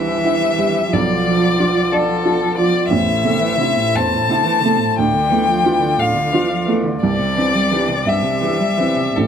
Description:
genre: neoclassical piano and strings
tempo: 54-62 BPM (dotted quarters)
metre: 6/8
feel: rubato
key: unclear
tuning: A4 = 445 Hz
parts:
  - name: rich violin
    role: melody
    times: 0.0-9.3 s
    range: A4 to A5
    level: -18 LUFS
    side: left 6 dB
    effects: none
  - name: rich cello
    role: second line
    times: 0.0-9.3 s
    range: E2 to G3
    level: -22 LUFS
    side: right 4 dB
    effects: none
  - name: warm upright piano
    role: accompaniment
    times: 0.0-9.3 s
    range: A1 to F5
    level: -18 LUFS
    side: right 3 dB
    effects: none
  - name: pedal harmonium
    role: sustained chords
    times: 0.0-9.3 s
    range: A3 to E5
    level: -28 LUFS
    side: left 1 dB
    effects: none
room: moderate studio reverb, RT60 0.6 s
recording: none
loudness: -14 LUFS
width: side -8 dB against mid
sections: 0.0-9.3 A section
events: none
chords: 0.0 C; 0.9 Bdim; 2.9 Am; 5.0 Dmadd9; 7.0 C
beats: | 0.92 1.92 | 2.90 3.96 | 4.98 5.98 | 7.02 8.07 | 9.16

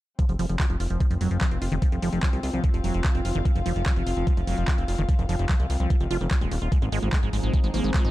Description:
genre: psychedelic trance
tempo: 147 BPM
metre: 4/4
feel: straight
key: F minor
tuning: A4 = 441 Hz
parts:
  - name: liquid acid bass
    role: riff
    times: 0.2-8.1 s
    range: Eb3 to F4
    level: -32 LUFS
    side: right 1 dB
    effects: phaser, auto-pan, sidechain pumping, ping-pong delay
  - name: electronic kick drum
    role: drums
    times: 0.2-8.0 s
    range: none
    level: -22 LUFS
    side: equal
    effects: overdrive
  - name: techno drum kit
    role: drums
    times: 0.2-8.1 s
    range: handclaps, hi-hat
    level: -35 LUFS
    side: equal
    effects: overdrive
  - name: dark chamber string section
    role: texture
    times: 0.2-8.1 s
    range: C4 to Ab5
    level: -34 LUFS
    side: left 1 dB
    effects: sidechain pumping
  - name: fat analog bass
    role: bass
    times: 0.3-8.1 s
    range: Eb1 to C2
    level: -26 LUFS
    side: equal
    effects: tube saturation
  - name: bubbling stepped-filter texture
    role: sustained chords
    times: 6.7-8.1 s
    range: F3 to C4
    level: -32 LUFS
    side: equal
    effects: chorus, built-in reverb, sidechain pumping
  - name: vowel-sweep wobble bass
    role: second line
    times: 6.8-7.2 s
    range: Bb3 to C4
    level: -43 LUFS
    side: right 5 dB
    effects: none
room: little or no reverb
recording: dark, warm production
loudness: -22 LUFS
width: side -16 dB against mid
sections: 0.2-8.1 A section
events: none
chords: 0.2 F5; 6.7 Ab5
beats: | 0.19 0.60 1.00 1.41 | 1.82 2.23 2.64 3.04 | 3.45 3.86 4.27 4.68 | 5.09 5.49 5.90 6.31 | 6.72 7.13 7.54 7.94

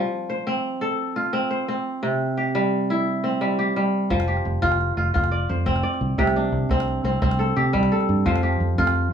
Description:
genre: west african traditional, West African string and xylophone music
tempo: 115 BPM (dotted quarters)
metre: 12/8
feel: straight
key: F major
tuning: A4 = 440 Hz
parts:
  - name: kora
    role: arpeggios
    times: 0.0-9.1 s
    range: C3 to D5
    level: -22 LUFS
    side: equal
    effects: none
  - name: fingered electric bass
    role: bass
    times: 4.1-9.1 s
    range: F1 to C3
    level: -23 LUFS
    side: equal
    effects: none
  - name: calabash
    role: percussion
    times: 4.1-9.0 s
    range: none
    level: -27 LUFS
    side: right 1 dB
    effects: none
room: light reverb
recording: studio reverb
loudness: -20 LUFS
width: side -8 dB against mid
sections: 0.0-4.1 A section; 4.1-9.1 B section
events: none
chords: 0.0 F; 2.0 C; 4.1 F5; 6.2 C5; 8.3 F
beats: 0.47 0.99 1.51 | 2.03 2.55 3.07 3.59 | 4.11 4.63 5.15 5.67 | 6.19 6.71 7.23 7.75 | 8.27 8.78

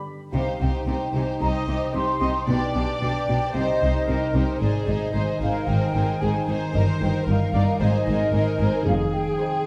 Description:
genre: cinematic, playful, whimsical film cue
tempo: 113 BPM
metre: 4/4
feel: straight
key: C minor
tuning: A4 = 441 Hz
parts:
  - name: mellow large flute ensemble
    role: second line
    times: 0.0-9.7 s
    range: C5 to D6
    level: -31 LUFS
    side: equal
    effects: none
  - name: concert harp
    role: arpeggios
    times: 0.0-9.7 s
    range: G2 to Ab4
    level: -31 LUFS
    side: equal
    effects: none
  - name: rich studio violin section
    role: melody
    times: 0.3-9.7 s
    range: Bb4 to D5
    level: -35 LUFS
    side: equal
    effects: none
  - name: warm studio violin section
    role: second line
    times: 0.3-9.7 s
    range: D4 to Bb4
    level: -36 LUFS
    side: equal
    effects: none
  - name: rich studio cello section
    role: bass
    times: 0.3-9.3 s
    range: F2 to C3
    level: -29 LUFS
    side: equal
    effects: none
  - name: rich studio double bass section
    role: bass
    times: 0.3-9.3 s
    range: F1 to C2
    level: -29 LUFS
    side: equal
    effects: none
  - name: rich studio viola section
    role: accompaniment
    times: 1.4-9.7 s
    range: G4 to Eb5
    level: -33 LUFS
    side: equal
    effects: none
room: wet recital hall reverb, RT60 1.7 s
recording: dark, warm production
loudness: -23 LUFS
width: mono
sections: 0.3-9.7 A section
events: none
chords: 0.3 Cm; 2.5 G/B; 3.5 Cm; 4.6 Ab; 6.7 Eb/G; 7.8 Ab; 8.9 Fm7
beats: | 0.34 0.87 1.41 1.94 | 2.48 3.01 3.55 4.08 | 4.61 5.14 5.68 6.21 | 6.74 7.27 7.80 8.33 | 8.86 9.39

